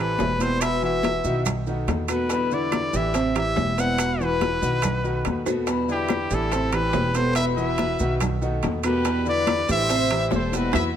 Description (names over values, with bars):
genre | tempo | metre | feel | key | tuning
latin, Cuban son and guajira | 142 BPM | 4/4 | straight | E minor | A4 = 440 Hz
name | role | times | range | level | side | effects
bright trumpet | melody | 0.0-10.8 s | G4 to F#5 | -26 LUFS | equal | none
picked old ladder-braced acoustic guitar | accompaniment | 0.0-10.9 s | B2 to F#4 | -30 LUFS | left 7 dB | none
clear grand piano | arpeggios | 0.0-10.9 s | B2 to C5 | -27 LUFS | right 2 dB | none
upright bass | bass | 0.0-10.9 s | E1 to E2 | -28 LUFS | equal | none
bongos | percussion | 0.2-10.8 s | none | -34 LUFS | left 9 dB | none
congas | percussion | 0.2-10.8 s | none | -31 LUFS | left 1 dB | none
maracas | percussion | 0.2-10.8 s | none | -36 LUFS | right 8 dB | none
timbales | percussion | 0.2-10.8 s | none | -32 LUFS | right 8 dB | none
claves | percussion | 0.6-10.8 s | none | -37 LUFS | right 4 dB | none
warm studio violin section | second line | 5.9-10.9 s | E4 to E5 | -32 LUFS | left 1 dB | none
room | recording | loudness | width
light reverb | none | -20 LUFS | side -9 dB against mid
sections
0.0-11.0 A section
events
drum fill 5.5; band accent 10.7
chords
0.0 Am7; 0.6 Esus2; 1.5 B7; 2.3 Em7; 3.1 Am7; 4.0 Esus2; 4.8 B7; 5.7 Em7; 6.5 Am7; 7.4 Esus2; 8.2 B7; 9.1 Em7; 9.9 Am7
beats
0.19 | 0.61 1.03 1.46 1.88 | 2.30 2.72 3.15 3.57 | 3.99 4.41 4.83 5.26 | 5.68 6.10 6.52 6.95 | 7.37 7.79 8.21 8.63 | 9.06 9.48 9.90 10.32 | 10.75